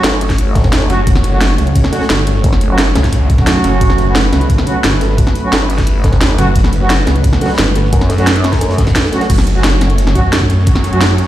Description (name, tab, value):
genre	dark technical drum and bass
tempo	175 BPM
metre	4/4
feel	straight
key	F# phrygian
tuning	A4 = 439 Hz
part	dark analog pad	sustained chords	0.0-11.3 s	A3 to C#5	-20 LUFS	left 1 dB	chorus, sidechain pumping
part	mellow brass ensemble	stabs	0.0-11.0 s	F#3 to F#4	-19 LUFS	right 2 dB	ping-pong delay
part	vowel-sweep wobble bass	bass	0.0-2.9, 5.5-9.0 s	F#1 to F#2	-15 LUFS	equal	chorus
part	crunchy breakbeat drum kit	drums	0.0-11.3 s	hi-hat, snare drum	-24 LUFS	equal	none
part	drum and bass drum kit	drums	0.0-11.3 s	crash cymbal, hi-hat, snare drum	-17 LUFS	right 1 dB	overdrive
part	electronic kick drum	drums	0.3-10.7 s	none	-13 LUFS	equal	overdrive
part	snarling distorted saw bass	bass	0.9-11.3 s	F#1 to F#2	-13 LUFS	equal	distortion, overdrive
room	light reverb, digital ambience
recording	played on a big sound system in a bare room, large studio reverb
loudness	-10 LUFS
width	side -13 dB against mid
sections	0.0-9.3 A section; 9.3-11.3 A section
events	drop 0.0-9.3, 9.3-11.3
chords	0.0 F#m